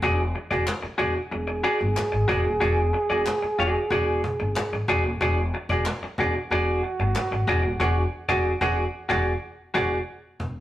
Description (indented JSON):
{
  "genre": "funk",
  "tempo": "92 BPM",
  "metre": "4/4",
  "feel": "straight",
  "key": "E mixolydian",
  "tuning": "A4 = 442 Hz",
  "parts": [
    { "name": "semi-hollow electric guitar", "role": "accompaniment", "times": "0.0-10.0 s", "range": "F#4 to D5", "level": "-25 LUFS", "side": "equal", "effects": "none" },
    { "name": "upright bass", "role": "bass", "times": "0.0-10.6 s", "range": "D#1 to G#1", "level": "-27 LUFS", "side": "equal", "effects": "none" },
    { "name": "cajon", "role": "drums", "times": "0.0-10.6 s", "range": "none", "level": "-33 LUFS", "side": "equal", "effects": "none" },
    { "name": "group handclap", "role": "percussion", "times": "0.7-7.3 s", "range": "none", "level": "-35 LUFS", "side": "left 2 dB", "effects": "none" },
    { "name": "clear trombone", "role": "second line", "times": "1.3-9.9 s", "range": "F#4 to G#4", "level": "-28 LUFS", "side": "right 2 dB", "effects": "none" }
  ],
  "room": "moderate stone room reverb, RT60 0.9 s",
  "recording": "rough rehearsal-room recording",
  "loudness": "-22 LUFS",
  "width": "side -13 dB against mid",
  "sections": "0.0-10.4 A section",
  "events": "band accent 7.8-10.4",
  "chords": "0.0 E9"
}